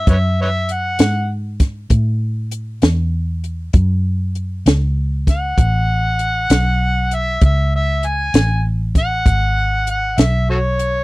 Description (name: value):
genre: slow blues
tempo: 65 BPM (dotted quarters)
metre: 12/8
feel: straight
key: unclear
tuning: A4 = 440 Hz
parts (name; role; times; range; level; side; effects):
- overdriven harmonica; melody; 0.0-11.0 s; F#4 to G#5; -19 LUFS; equal; none
- vintage muted fingered electric bass; bass; 0.0-11.0 s; G#1 to A2; -18 LUFS; equal; none
- compact cocktail drum kit; drums; 0.1-10.9 s; hi-hat, kick drum, snare drum; -14 LUFS; equal; none
room: little or no reverb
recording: dry, close 1970s-style studio recording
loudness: -15 LUFS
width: side -20 dB against mid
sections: 0.0-11.0 A section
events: harmonica solo 0.0-11.0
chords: 0.1 F#m; 7.4 C#m